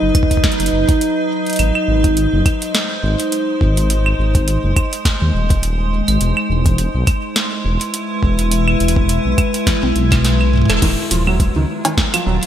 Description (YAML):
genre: IDM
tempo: 104 BPM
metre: 4/4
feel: swing 56% on 16ths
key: unclear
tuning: A4 = 442 Hz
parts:
  - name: icy glass pad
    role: sustained chords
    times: 0.0-12.5 s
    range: Gb3 to E5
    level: -19 LUFS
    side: equal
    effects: chorus, built-in reverb
  - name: dark detuned saw bass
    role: bass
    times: 0.0-12.4 s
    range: Eb1 to Eb2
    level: -17 LUFS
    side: equal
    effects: tube saturation
  - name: booming analog drum machine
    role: drums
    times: 0.1-12.5 s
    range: claves, cowbell, crash cymbal, hi-hat, snare drum, toms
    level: -20 LUFS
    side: right 1 dB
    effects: overdrive, gated reverb
  - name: electronic kick drum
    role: drums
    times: 0.1-12.1 s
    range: none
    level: -16 LUFS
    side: equal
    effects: none
  - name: felt-muted upright piano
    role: arpeggios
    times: 10.8-12.3 s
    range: Eb3 to Gb3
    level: -21 LUFS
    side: right 2 dB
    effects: lush chorus, ping-pong delay
room: moderate lush hall reverb, RT60 1.8 s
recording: bright 1980s-style digital production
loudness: -14 LUFS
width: side -10 dB against mid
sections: 0.0-10.8 A section; 10.8-12.5 A section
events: drum fill 9.7-10.8; band accent 10.7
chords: 0.0 B; 1.6 Ab; 6.2 E; 10.8 Ebmadd9